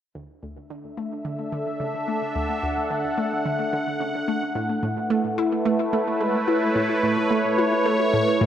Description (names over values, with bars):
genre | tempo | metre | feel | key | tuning
ambient, sequencer-driven space music | 109 BPM | 4/4 | straight | unclear | A4 = 440 Hz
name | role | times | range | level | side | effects
sweeping resonant pad | sustained chords | 0.2-8.5 s | A3 to F#5 | -23 LUFS | equal | chorus
analog pluck | riff | 0.2-8.5 s | D2 to E4 | -26 LUFS | equal | chorus, tape echo
room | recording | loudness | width
wet spring reverb, RT60 2.5 s | echo-heavy mix | -21 LUFS | side -10 dB against mid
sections
0.2-8.5 A section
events
fade-in on synth arpeggio sound 0.2-8.5; fade-in on analog synth pad 0.2-8.5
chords
0.2 D; 4.6 A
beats
| 0.15 0.70 1.25 1.80 | 2.35 2.90 3.45 4.00 | 4.55 5.11 5.66 6.21 | 6.76 7.31 7.86 8.41